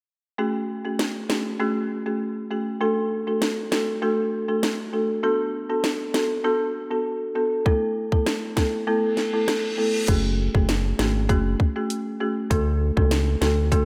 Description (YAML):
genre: dancehall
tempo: 99 BPM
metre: 4/4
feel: straight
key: F# minor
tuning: A4 = 440 Hz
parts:
  - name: folk marimba with medium mallets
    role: accompaniment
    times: 0.4-13.8 s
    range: A3 to A4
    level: -26 LUFS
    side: equal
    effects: none
  - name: island pop drum kit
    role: drums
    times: 1.0-13.8 s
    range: crash cymbal, hi-hat, kick drum, rim click, snare drum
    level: -28 LUFS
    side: equal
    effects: none
  - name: reverse cymbal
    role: sound effects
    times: 9.1-10.1 s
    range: none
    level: -36 LUFS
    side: equal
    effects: none
  - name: round analog bass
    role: bass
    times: 10.1-13.8 s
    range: F#1 to D2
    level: -25 LUFS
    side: equal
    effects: none
room: wet lush hall reverb, RT60 2.6 s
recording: dreamy mix soaked in reverb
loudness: -24 LUFS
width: mono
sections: 0.4-10.1 A section; 10.1-13.8 B section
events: kick muted 8.9-10.1; reverse cymbal 9.1-10.1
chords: 0.4 F#madd9; 2.8 D; 5.2 Bm7; 7.7 Asus2; 10.1 F#madd9; 12.5 D